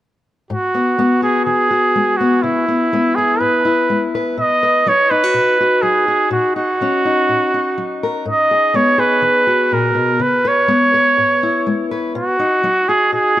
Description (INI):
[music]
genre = folk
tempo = 124 BPM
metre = 4/4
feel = straight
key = G# minor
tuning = A4 = 440 Hz
[part]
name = clear trumpet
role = melody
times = 0.5-13.4 s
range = E4 to D#5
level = -14 LUFS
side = right 2 dB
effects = analog delay
[part]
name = fingerpicked steel-string acoustic guitar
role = accompaniment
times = 0.5-13.4 s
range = G#2 to B4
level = -19 LUFS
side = left 3 dB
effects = none
[sound]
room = moderate plate reverb, RT60 3.9 s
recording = echo-heavy mix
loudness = -13 LUFS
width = side -13 dB against mid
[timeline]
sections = 0.5-13.4 A section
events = none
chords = 0.5 G#m7; 2.4 C#m7; 4.4 B; 6.3 D#m7/A#; 8.3 G#m7; 10.2 C#m7; 12.2 B